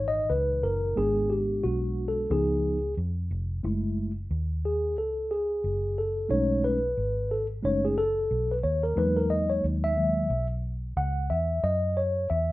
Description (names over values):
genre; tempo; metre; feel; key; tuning
hip hop, jazz-hop; 90 BPM; 4/4; swing 60% on 16ths; unclear; A4 = 438 Hz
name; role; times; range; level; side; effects
mellow tine electric piano; accompaniment; 0.0-12.5 s; A#2 to F#5; -26 LUFS; equal; medium stereo tremolo
vintage muted fingered electric bass; bass; 0.0-12.5 s; E#1 to F#2; -29 LUFS; equal; none
room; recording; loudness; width
wet studio reverb, RT60 0.6 s; rough home demo mix; -25 LUFS; side -18 dB against mid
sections
0.0-12.5 A section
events
tine electric piano solo 0.0-12.5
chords
0.0 C#m69; 1.0 G#dim; 2.3 C#7; 3.6 F#m9; 6.3 B13; 9.0 Emaj9#11; 11.6 F#7(no3)